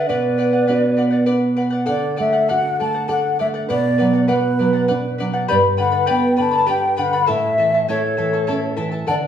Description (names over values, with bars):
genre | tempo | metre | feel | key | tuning
andean folk, Andean ensemble | 100 BPM | 3/4 | straight | B minor | A4 = 439 Hz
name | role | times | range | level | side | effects
mellow large quena | melody | 0.0-9.1 s | B4 to A5 | -20 LUFS | left 1 dB | none
reedy pan flute | second line | 0.0-1.3, 7.9-9.2 s | A4 to D5 | -22 LUFS | equal | none
charango | accompaniment | 0.0-9.3 s | E4 to B5 | -22 LUFS | left 3 dB | none
nylon-string guitar | accompaniment | 0.0-9.3 s | G2 to A4 | -20 LUFS | right 2 dB | none
room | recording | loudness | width
wet large studio reverb, RT60 0.9 s | band playing live in one room | -16 LUFS | side -9 dB against mid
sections
0.0-1.9 A section; 1.9-9.3 B section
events
none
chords
0.1 Bm; 1.9 D; 3.7 Bm; 5.5 G; 7.3 A